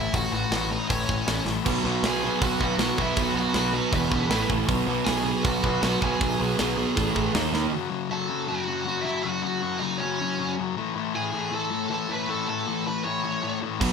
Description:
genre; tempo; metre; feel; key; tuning
punk rock; 158 BPM; 4/4; straight; A lydian; A4 = 438 Hz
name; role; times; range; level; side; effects
high-gain lead guitar; melody; 0.0-13.6 s; B3 to C#6; -29 LUFS; right 2 dB; distortion
sludgy distorted guitar; riff; 0.0-13.9 s; E2 to D#4; -28 LUFS; left 8 dB; overdrive
growling picked electric bass; bass; 0.0-7.7, 13.8-13.9 s; E1 to D#2; -31 LUFS; right 1 dB; overdrive
tight metal drum kit; drums; 0.1-7.6, 13.8-13.9 s; crash cymbal, hi-hat, kick drum, snare drum; -29 LUFS; equal; none
overdriven semi-hollow guitar; riff; 1.7-7.7, 13.8-13.9 s; E2 to D#4; -26 LUFS; right 9 dB; none
room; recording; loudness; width
moderate large studio reverb, RT60 0.8 s; band playing live in one room; -23 LUFS; side -6 dB against mid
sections
0.0-7.7 A section; 7.7-13.9 A section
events
drum fill 1.5, 7.5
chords
0.0 A; 1.6 B5; 3.9 E5; 4.3 A5; 4.7 B5; 7.0 A5; 7.3 D#5; 7.7 F#m; 10.8 A

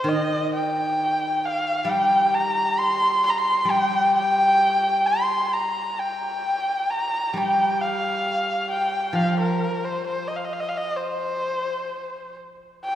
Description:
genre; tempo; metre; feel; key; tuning
chinese traditional; 66 BPM; 2/4; rubato; unclear; A4 = 440 Hz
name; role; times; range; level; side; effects
dark erhu; melody; 0.0-13.0 s; Bb4 to C6; -22 LUFS; equal; none
steel-string zither; accompaniment; 0.0-11.9 s; Eb3 to G3; -26 LUFS; equal; none
room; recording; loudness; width
wet concert hall reverb, RT60 2.4 s; heard from further back in the room; -20 LUFS; side -11 dB against mid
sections
0.0-12.8 A section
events
none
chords
none

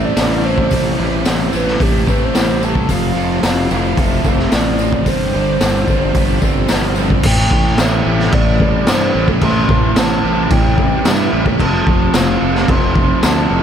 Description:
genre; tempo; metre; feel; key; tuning
rock, shoegaze and dream pop; 110 BPM; 4/4; straight; A minor; A4 = 444 Hz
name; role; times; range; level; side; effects
reedy FM lead; melody; 0.0-13.6 s; G4 to C6; -22 LUFS; right 1 dB; chorus, tape echo
crunchy overdriven guitar; riff; 0.0-13.6 s; G2 to A4; -21 LUFS; right 11 dB; reverse reverb
raw garage guitar; riff; 0.0-13.6 s; F2 to A3; -22 LUFS; right 1 dB; overdrive
thick fuzz guitar; riff; 0.0-13.6 s; G2 to E4; -22 LUFS; left 9 dB; distortion, ensemble chorus
fuzz fingered electric bass; bass; 0.0-13.6 s; F1 to G2; -19 LUFS; equal; overdrive
raw garage drum kit; drums; 0.2-13.4 s; crash cymbal, hi-hat, kick drum, snare drum; -16 LUFS; equal; none
tambourine; percussion; 0.2-13.4 s; none; -31 LUFS; left 16 dB; none
room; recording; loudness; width
light reverb, small room ambience; none; -12 LUFS; side -8 dB against mid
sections
0.0-7.2 A section; 7.2-13.6 B section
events
none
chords
0.0 Am7; 2.9 Fmaj7; 5.1 G7sus4; 7.2 Am7; 11.6 Fmaj7

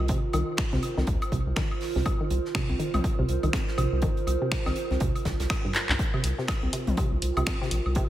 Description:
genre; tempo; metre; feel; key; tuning
minimal techno; 122 BPM; 4/4; swing 60% on 16ths; unclear; A4 = 440 Hz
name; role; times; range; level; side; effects
rubbery square bass; bass; 0.0-8.0 s; Bb1 to D2; -27 LUFS; equal; sidechain pumping
warbly tape-like pad; texture; 0.0-8.1 s; F4 to Eb5; -33 LUFS; right 5 dB; chorus, built-in reverb, sidechain pumping
resonant blip pluck; riff; 0.1-8.0 s; G2 to Eb3; -32 LUFS; equal; chorus, sidechain pumping, diffuse ambient delay
electronic kick drum; drums; 0.1-8.1 s; none; -29 LUFS; equal; none
loose indie drum kit; drums; 0.1-8.1 s; hi-hat, snare drum; -41 LUFS; right 2 dB; sidechain pumping on hats, high-pass filter on hats, high-pass filter on snare, high-pass filter on room
electronic woodblock, congas and toms; percussion; 0.3-7.9 s; none; -35 LUFS; left 2 dB; overdrive, analog delay
punchy analog drum machine; drums; 0.6-7.8 s; finger snaps, handclaps, hi-hat; -32 LUFS; equal; none
room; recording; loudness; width
light reverb; none; -24 LUFS; side -13 dB against mid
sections
0.0-8.1 A section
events
drum fill 5.7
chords
0.0 C7(no3)

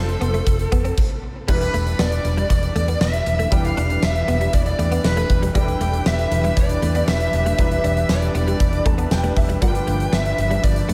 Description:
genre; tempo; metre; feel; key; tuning
1980s-style pop; 118 BPM; 4/4; straight; unclear; A4 = 440 Hz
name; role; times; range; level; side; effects
bluesy overdriven lead guitar; melody; 0.0-10.9 s; A4 to G5; -27 LUFS; equal; distortion, shimmer reverb
clear baby grand piano; accompaniment; 0.0-10.9 s; E3 to A5; -32 LUFS; equal; ensemble chorus, shimmer reverb
brassy analog pad; sustained chords; 0.0-10.9 s; E3 to C6; -31 LUFS; equal; chorus, shimmer reverb
vintage muted fingered electric bass; bass; 0.0-10.9 s; E1 to G2; -24 LUFS; equal; none
huge arena drum kit; drums; 0.1-10.9 s; crash cymbal, hi-hat, kick drum, snare drum, tambourine; -24 LUFS; equal; none
direct-recorded clean electric guitar; riff; 0.2-10.9 s; G3 to D4; -32 LUFS; equal; ensemble chorus, tape echo, shimmer reverb
room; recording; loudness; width
moderate plate reverb, RT60 1.7 s, small room ambience; dreamy mix soaked in reverb; -19 LUFS; mono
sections
0.0-1.5 A section; 1.5-10.9 B section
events
stop 1.0-1.5; grand piano fill 8.6-9.6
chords
0.0 F; 1.5 Em7; 9.6 G7

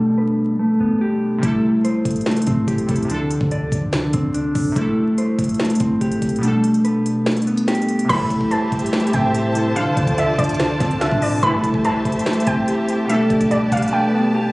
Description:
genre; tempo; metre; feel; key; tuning
hip hop, trap; 144 BPM; 4/4; half-time; A minor; A4 = 440 Hz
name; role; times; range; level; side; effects
glassy digital keys; accompaniment; 0.0-14.5 s; B2 to A4; -24 LUFS; equal; chorus, low-pass filter
mellow electric guitar; arpeggios; 0.0-14.5 s; D3 to D5; -18 LUFS; equal; spring reverb, low-pass filter, ping-pong delay
clean 808-style bass; bass; 0.0-13.9 s; F1 to A2; -28 LUFS; equal; none
trap drum kit; drums; 1.4-13.9 s; crash cymbal, hi-hat, kick drum, snare drum; -25 LUFS; equal; overdrive
warbly dusty pluck; second line; 8.1-14.3 s; D5 to B5; -23 LUFS; right 1 dB; chorus, ping-pong delay
dark chamber string section; sustained chords; 8.1-14.5 s; F4 to A5; -25 LUFS; equal; none
sync-sweep polysynth; stabs; 8.1-8.3, 11.4-11.6 s; C2 to E3; -29 LUFS; equal; none
room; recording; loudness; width
light reverb, digital ambience; recorded on a phone in the room, club reverb, vinyl crackle, compression, nothing above 10.8 kHz; -16 LUFS; side -22 dB against mid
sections
0.0-8.1 A section; 8.1-14.5 B section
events
filter sweep 0.0-1.4; kick muted 6.4-8.1; silent gap 13.9-14.5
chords
0.0 Gadd9; 1.4 Am7; 3.1 Dm7; 4.8 Am7; 6.4 Gadd9; 8.1 Am7; 9.8 Dm7; 11.4 Am7; 13.1 Gadd9

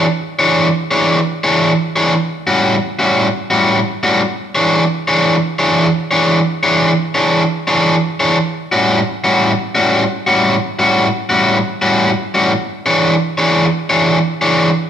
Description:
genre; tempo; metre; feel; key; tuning
blues; 116 BPM; 4/4; swing 68% on 8ths; E mixolydian; A4 = 440 Hz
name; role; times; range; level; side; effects
overdriven semi-hollow guitar; solo; 0.0-14.7 s; A2 to C#5; -12 LUFS; equal; none
room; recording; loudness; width
wet large studio reverb, RT60 1.3 s; band playing live in one room; -12 LUFS; side -9 dB against mid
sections
0.0-14.9 A section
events
none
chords
0.0 E6; 2.1 A6; 4.2 E6; 8.4 A6; 12.5 E6

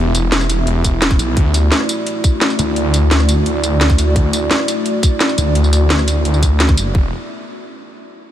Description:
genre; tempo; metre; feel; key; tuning
dark technical drum and bass; 172 BPM; 4/4; straight; unclear; A4 = 440 Hz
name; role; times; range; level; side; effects
dark analog pad; sustained chords; 0.0-7.1 s; A3 to E5; -20 LUFS; equal; chorus, sidechain pumping
snarling distorted saw bass; bass; 0.0-7.1 s; E1 to D2; -15 LUFS; equal; distortion, tube saturation
drum and bass drum kit; drums; 0.1-6.8 s; hi-hat, rim click, snare drum, tambourine; -18 LUFS; equal; none
electronic kick drum; drums; 0.8-7.0 s; none; -14 LUFS; equal; none
room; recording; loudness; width
light reverb; none; -12 LUFS; side -11 dB against mid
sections
0.0-6.9 A section; 6.9-8.3 B section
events
filter sweep on detuned saw bass 0.0-6.9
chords
0.0 Em; 1.4 Dadd9; 6.9 E

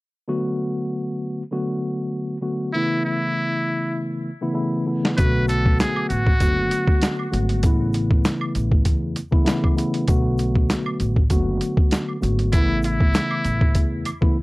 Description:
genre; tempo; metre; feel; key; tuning
hip hop, boom-bap hip-hop; 98 BPM; 4/4; swing 55% on 16ths; B minor; A4 = 440 Hz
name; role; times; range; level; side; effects
mellow tine electric piano; accompaniment; 0.3-14.4 s; C#3 to F#4; -23 LUFS; left 1 dB; medium stereo tremolo, cassette tape, high-pass filter, low-pass filter
trumpet with metal mute; melody; 2.7-7.1, 12.5-13.9 s; E4 to B4; -26 LUFS; equal; high-pass filter, low-pass filter, analog delay
boom bap sampler-style drum kit; drums; 5.0-14.4 s; hi-hat, kick drum, snare drum; -19 LUFS; equal; none
upright bass; bass; 5.2-14.0 s; F#1 to E2; -24 LUFS; equal; none
egg shaker and woodblock; percussion; 5.2-14.2 s; none; -35 LUFS; right 2 dB; none
room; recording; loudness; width
little or no reverb; dry, gritty hardware recording; -19 LUFS; side -22 dB against mid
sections
0.3-5.2 A section; 5.2-14.4 B section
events
drum fill 4.6-5.2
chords
0.3 Bm7; 2.7 Aadd9; 5.2 Bm7; 7.6 Aadd9; 10.1 Bm7; 12.5 Aadd9

